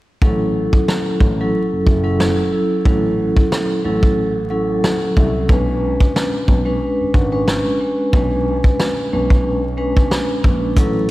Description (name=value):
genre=hip hop, boom-bap hip-hop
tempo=91 BPM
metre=4/4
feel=swing 55% on 16ths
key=B dorian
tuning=A4 = 440 Hz
part: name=vibraphone with soft mallets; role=accompaniment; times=0.2-11.1 s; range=F#3 to B4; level=-18 LUFS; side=equal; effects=none
part: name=dark concert grand piano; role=bass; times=0.2-11.1 s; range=F#1 to C2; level=-22 LUFS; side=equal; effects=none
part: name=vintage drum kit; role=drums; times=0.2-11.1 s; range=hi-hat, kick drum, rim click, snare drum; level=-17 LUFS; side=equal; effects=none
room=moderate lush hall reverb, RT60 2.6 s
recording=dreamy mix soaked in reverb, vinyl crackle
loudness=-14 LUFS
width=side -17 dB against mid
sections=0.2-11.1 A section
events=hi-hats muted 0.2-10.8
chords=0.2 A6; 5.5 Bm69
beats=| 0.22 0.88 1.54 2.19 | 2.85 3.51 4.17 4.83 | 5.49 6.15 6.81 7.47 | 8.13 8.79 9.45 10.11 | 10.77